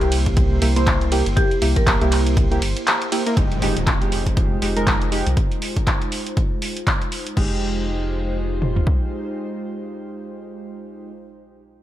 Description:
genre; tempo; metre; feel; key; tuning
deep house; 120 BPM; 4/4; swing 58% on 16ths; F minor; A4 = 440 Hz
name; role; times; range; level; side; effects
marimba with medium hard mallets; melody; 0.0-2.0 s; G4 to Bb4; -28 LUFS; left 2 dB; tape echo
airy breathy pad; sustained chords; 0.0-11.1 s; Ab3 to C5; -30 LUFS; right 1 dB; chorus, sidechain pumping
warm analog keys; stabs; 0.0-11.1 s; Ab3 to C5; -26 LUFS; right 2 dB; chorus, sidechain pumping, dub echo
round analog bass; bass; 0.0-8.8 s; Eb1 to C2; -22 LUFS; equal; sidechain pumping
punchy analog drum machine; drums; 0.0-7.5 s; crash cymbal, handclaps, hi-hat, ride cymbal; -24 LUFS; equal; none
string machine, violins; texture; 0.0-3.4 s; C5 to C6; -39 LUFS; left 1 dB; none
punchy analog drum machine; drums; 0.3-9.0 s; kick drum, toms; -20 LUFS; equal; none
impact; sound effects; 3.4-5.4 s; none; -29 LUFS; equal; none
room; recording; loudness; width
light reverb; faint mains hum; -18 LUFS; side -13 dB against mid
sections
0.0-3.4 A section; 3.4-7.4 B section; 7.4-11.4 C section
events
drop 0.0-3.4; impact 3.4-5.4; filter sweep on analog synth pad 3.4-7.4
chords
0.0 C7; 3.4 Fm7

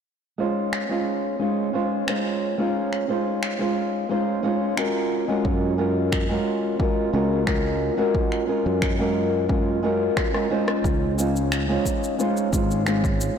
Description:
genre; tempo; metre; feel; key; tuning
sunset chillout; 89 BPM; 4/4; straight; Db major; A4 = 440 Hz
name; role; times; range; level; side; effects
nylon-string guitar; accompaniment; 0.4-13.3 s; Ab3 to C5; -22 LUFS; equal; auto-pan, low-pass filter, tape echo
electronic finger snaps, rim click and cabasa; drums; 0.7-13.3 s; none; -30 LUFS; equal; soft clipping on snare
sustaining fretless electric bass; bass; 5.4-13.3 s; Ab1 to Gb2; -25 LUFS; equal; none
electronic kick drum; drums; 5.4-13.2 s; none; -25 LUFS; equal; none
room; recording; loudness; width
moderate lush hall reverb, RT60 1.9 s; blown-out, overdriven recording, overdrive; -21 LUFS; side -7 dB against mid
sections
0.1-10.8 A section; 10.8-13.4 B section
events
drum fill 10.2-10.8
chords
0.1 Dbmaj9; 5.1 Gbmaj9; 10.8 Dbmaj9

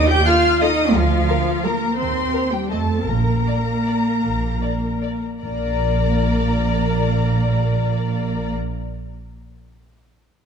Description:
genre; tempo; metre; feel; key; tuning
classical; 145-187 BPM; 3/4; rubato; Bb major; A4 = 437 Hz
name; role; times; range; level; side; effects
rich studio violin section; second line; 0.0-8.5 s; F5 to G6; -27 LUFS; left 2 dB; none
rich studio viola section; accompaniment; 0.0-8.5 s; F4 to G5; -26 LUFS; left 1 dB; none
rich studio cello section; bass; 0.0-8.5 s; F3 to G4; -22 LUFS; right 1 dB; none
warm studio double bass section; bass; 0.0-8.5 s; Bb1 to F2; -21 LUFS; right 2 dB; none
warm symphonic violin section; melody; 0.3-8.5 s; A4 to Eb5; -28 LUFS; left 9 dB; none
timpani; percussion; 3.1-9.2 s; Bb2; -37 LUFS; left 2 dB; none
room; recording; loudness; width
moderate scoring stage reverb, RT60 1.9 s; dark, warm production; -17 LUFS; side -7 dB against mid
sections
0.0-5.4 A section; 5.4-7.8 B section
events
slowing down 2.5-5.4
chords
0.0 F7(no3)/Eb; 0.9 Bb/D; 2.0 Cm/Eb; 2.7 F; 3.1 N.C.; 5.4 Bb

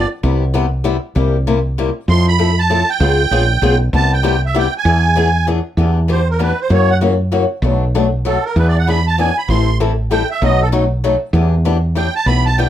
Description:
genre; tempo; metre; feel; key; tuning
acoustic string swing (jazz manouche); 194 BPM; 3/4; swing 60% on 8ths; E minor from 5.8 s; A4 = 440 Hz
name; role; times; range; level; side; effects
musette accordion; melody; 0.0-0.1, 2.1-12.7 s; A4 to C6; -18 LUFS; right 4 dB; none
picked old ladder-braced acoustic guitar; accompaniment; 0.0-12.7 s; B2 to A4; -18 LUFS; left 4 dB; none
woody fretless electric bass; bass; 0.0-12.7 s; A1 to F#2; -15 LUFS; equal; none
room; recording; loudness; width
light reverb; none; -13 LUFS; side -11 dB against mid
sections
0.0-5.8 A section; 5.8-12.7 B section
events
accordion solo 5.8-12.7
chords
0.2 Cmaj7; 1.2 C7; 2.1 Fmaj7; 3.0 C#7#11; 3.9 Cmaj7; 4.9 E7; 5.8 Em7; 6.7 F#7; 7.6 Bm7; 8.6 E7; 9.5 Am7; 10.4 B7; 11.3 Em7

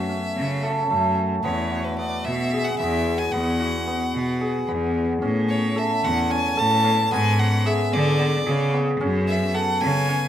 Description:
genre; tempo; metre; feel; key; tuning
contemporary instrumental, chamber music in an uneven meter; 222 BPM (eighths); 7/8; straight; unclear; A4 = 444 Hz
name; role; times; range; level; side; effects
bright violin; melody; 0.0-10.3 s; B4 to A5; -27 LUFS; left 1 dB; none
cimbalom; arpeggios; 0.0-10.3 s; A3 to A4; -24 LUFS; equal; none
bright cello; bass; 0.0-10.3 s; E2 to D3; -23 LUFS; equal; none
room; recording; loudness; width
light reverb; close, detailed microphones; -20 LUFS; side -10 dB against mid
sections
0.0-5.2 A section; 5.2-10.3 B section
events
none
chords
0.0 F#m7; 1.4 Eadd9; 7.1 G#dim; 9.0 F#madd9

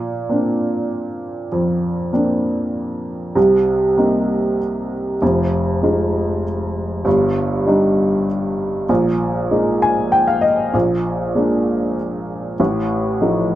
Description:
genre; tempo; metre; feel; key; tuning
folk; 98 BPM; 3/4; straight; unclear; A4 = 440 Hz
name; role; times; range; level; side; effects
dark upright piano; solo; 0.0-13.6 s; F1 to Ab5; -16 LUFS; equal; none
room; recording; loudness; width
moderate studio reverb, RT60 0.6 s; nothing above 10.4 kHz; -16 LUFS; side -13 dB against mid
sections
0.0-3.4 A section; 3.4-13.6 B section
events
none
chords
0.0 Bbadd9; 3.4 Cm7; 5.2 Fm7; 7.1 Ebmaj7/G; 8.9 Bb7sus4; 10.7 Bb7; 12.6 F7/A

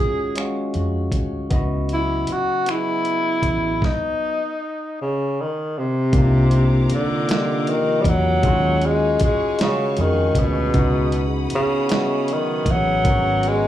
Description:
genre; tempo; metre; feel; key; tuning
slow six-eight R&B; 52 BPM (dotted quarters); 6/8; straight; unclear; A4 = 440 Hz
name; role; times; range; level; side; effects
breathy tenor saxophone; melody; 0.0-13.7 s; Cb3 to Ab4; -20 LUFS; equal; slapback echo
electric guitar at the edge of break-up; second line; 0.0-13.7 s; Ab2 to Gb4; -30 LUFS; right 6 dB; lush chorus, slapback echo
barky tine electric piano; accompaniment; 0.0-13.7 s; Ab3 to F5; -26 LUFS; left 3 dB; slapback echo
dusty soul sampler-style drum kit; drums; 0.4-13.6 s; finger snaps, hi-hat, kick drum, snare drum; -22 LUFS; equal; none
vintage muted fingered electric bass; bass; 0.8-13.7 s; Ab1 to F2; -21 LUFS; equal; none
warm studio string section; sustained chords; 6.1-13.7 s; F4 to Eb6; -32 LUFS; left 1 dB; none
room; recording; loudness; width
light reverb; live gig heard through the venue's PA, club reverb; -18 LUFS; side -12 dB against mid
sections
0.0-6.1 A section; 6.1-13.7 B section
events
stop 3.8-6.1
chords
0.0 Ebm11; 1.5 Dbm11; 3.8 N.C.; 6.1 Cm11; 8.4 Ebm11; 10.7 Dbm11; 13.1 Abm11

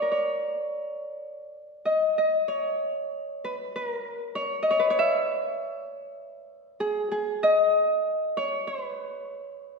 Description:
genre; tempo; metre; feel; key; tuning
fado; 97 BPM; 4/4; uneven beats, rubato; unclear; A4 = 444 Hz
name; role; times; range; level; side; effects
Celtic harp; solo; 0.0-9.8 s; G#4 to E5; -25 LUFS; left 1 dB; none
room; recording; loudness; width
wet scoring stage reverb, RT60 1.8 s; recorded in a church or concert hall; -24 LUFS; side -3 dB against mid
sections
0.0-9.8 A section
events
none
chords
none

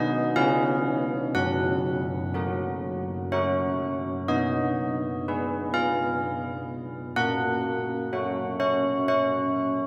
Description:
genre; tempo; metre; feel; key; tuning
classical, tune for church bells; 62 BPM; 3/4; straight; F# major; A4 = 440 Hz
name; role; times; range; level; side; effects
old church bells; solo; 0.0-9.9 s; F#3 to F#5; -26 LUFS; equal; none
room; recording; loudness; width
wet cathedral reverb, RT60 4.9 s; none; -27 LUFS; mono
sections
0.0-4.3 A section; 4.3-9.9 B section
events
none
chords
0.4 C#7; 1.4 F#; 4.3 G#m/B; 7.2 F#/A#

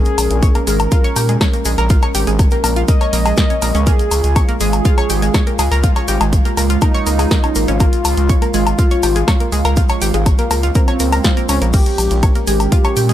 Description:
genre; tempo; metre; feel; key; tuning
melodic techno; 122 BPM; 4/4; straight; Bb dorian; A4 = 440 Hz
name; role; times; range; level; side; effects
analog synth brass; melody; 0.0-13.1 s; C4 to Eb5; -22 LUFS; equal; chorus, sidechain pumping, ping-pong delay
dark analog pad; sustained chords; 0.0-13.1 s; Ab3 to F5; -23 LUFS; right 1 dB; chorus, sidechain pumping
analog pluck; arpeggios; 0.0-13.1 s; Ab3 to Db6; -22 LUFS; equal; chorus, sidechain pumping, digital delay
punchy analog drum machine; drums; 0.1-13.1 s; crash cymbal, hi-hat, snare drum, woodblock; -21 LUFS; left 2 dB; sidechain pumping on hats, sidechain pumping on cymbals, sidechain pumping on perc
cabasa; percussion; 0.1-13.1 s; none; -28 LUFS; left 4 dB; none
gritty driven synth bass; bass; 0.2-13.1 s; Ab1 to Bb2; -17 LUFS; equal; sidechain pumping
electronic kick drum; drums; 0.4-12.8 s; none; -14 LUFS; equal; none
room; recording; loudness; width
little or no reverb; none; -12 LUFS; side -12 dB against mid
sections
0.0-13.1 A section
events
none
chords
0.0 Bbm7

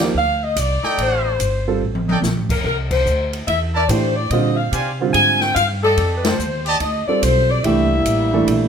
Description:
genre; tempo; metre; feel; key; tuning
jazz, big band swing; 144 BPM; 4/4; swing 64% on 8ths; unclear; A4 = 441 Hz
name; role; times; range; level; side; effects
warm baby grand piano; accompaniment; 0.0-8.7 s; D3 to A4; -20 LUFS; right 5 dB; none
upright bass; bass; 0.0-8.7 s; F1 to C3; -22 LUFS; equal; none
open jazz drum kit; drums; 0.0-8.6 s; crash cymbal, hi-hat, kick drum, ride cymbal, snare drum, toms; -25 LUFS; equal; none
warm saxophone section; melody; 0.2-8.7 s; A4 to Ab5; -19 LUFS; left 3 dB; none
clear trumpet section; stabs; 0.8-6.8 s; Eb4 to A5; -23 LUFS; right 2 dB; none
warm trombone section; second line; 7.6-8.7 s; G3 to E4; -21 LUFS; right 1 dB; none
room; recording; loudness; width
moderate large studio reverb, RT60 1.0 s; none; -16 LUFS; side -7 dB against mid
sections
0.0-8.7 A section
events
drum fill 1.8-2.2; band accent 2.9, 6.2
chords
0.0 F13; 2.6 C69; 4.3 Bb13; 6.0 F13; 7.6 C13

